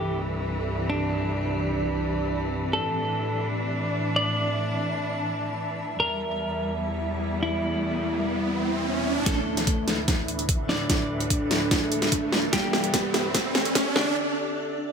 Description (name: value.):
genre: heavy wobble dubstep.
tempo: 147 BPM.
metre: 4/4.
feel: half-time.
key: unclear.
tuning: A4 = 440 Hz.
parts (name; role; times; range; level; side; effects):
clean electric guitar; melody; 0.0-14.9 s; D3 to D5; -29 LUFS; equal; dub echo.
rich studio string section; sustained chords; 0.0-14.1 s; C2 to D4; -29 LUFS; equal; sidechain pumping, low-pass filter.
granular cloud pad; texture; 0.0-14.2 s; B3 to A5; -32 LUFS; right 1 dB; built-in reverb, sidechain pumping.
riser; sound effects; 7.3-14.2 s; none; -31 LUFS; right 2 dB; none.
dubstep drum kit; drums; 9.3-14.0 s; hi-hat, snare drum; -25 LUFS; equal; overdrive, high-pass filter on snare, high-pass filter on hats, high-pass filter on room.
electronic kick drum; drums; 9.3-13.8 s; none; -27 LUFS; equal; none.
room: light reverb.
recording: high-pass filter.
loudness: -23 LUFS.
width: side -6 dB against mid.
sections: 0.0-9.3 A section; 9.3-14.9 B section.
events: riser 7.3-9.3, 9.3-14.2; build-up 9.3-14.9; drum fill 9.3-14.2; filter sweep on string section 9.3-14.9; break 14.2-14.9.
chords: 0.0 C; 2.7 Asus4; 6.0 Edim; 9.3 Dsus2; 12.5 C.